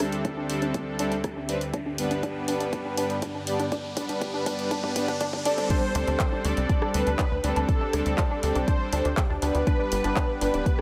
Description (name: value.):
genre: progressive house.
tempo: 121 BPM.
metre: 4/4.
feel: straight.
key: unclear.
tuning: A4 = 440 Hz.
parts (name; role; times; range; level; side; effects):
airy breathy pad; sustained chords; 0.0-10.8 s; D2 to D6; -38 LUFS; equal; chorus, sidechain pumping.
unison pluck; arpeggios; 0.0-10.8 s; D4; -35 LUFS; equal; ensemble chorus, sidechain pumping, delay.
soft supersaw; stabs; 0.0-10.8 s; G3 to D5; -32 LUFS; equal; phaser, sidechain pumping, delay.
big-room dance drum kit; drums; 0.0-10.8 s; crash cymbal, handclaps, hi-hat, rim click; -36 LUFS; equal; high-pass filter on hats, high-pass filter on snare, high-pass filter on cymbals.
riser; sound effects; 1.3-5.7 s; none; -42 LUFS; equal; none.
electronic kick drum; drums; 0.2-10.8 s; none; -29 LUFS; equal; high-pass filter on kick.
unison lead; melody; 5.7-10.8 s; A4 to D5; -33 LUFS; equal; analog chorus, delay.
tight sequencer bass; bass; 6.0-10.6 s; D1 to D2; -30 LUFS; equal; sidechain pumping.
room: light reverb.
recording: none.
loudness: -26 LUFS.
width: mono.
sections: 0.0-5.7 A section; 5.7-10.8 B section.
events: build-up 0.0-5.7; filter sweep on synth pluck 0.0-5.7; filter sweep on analog synth pad 0.0-5.7; riser 1.3-5.7; drum fill 1.7-5.7; drop 5.7-10.8.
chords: 0.0 D7sus4; 1.7 G; 5.7 D7sus4; 9.7 G.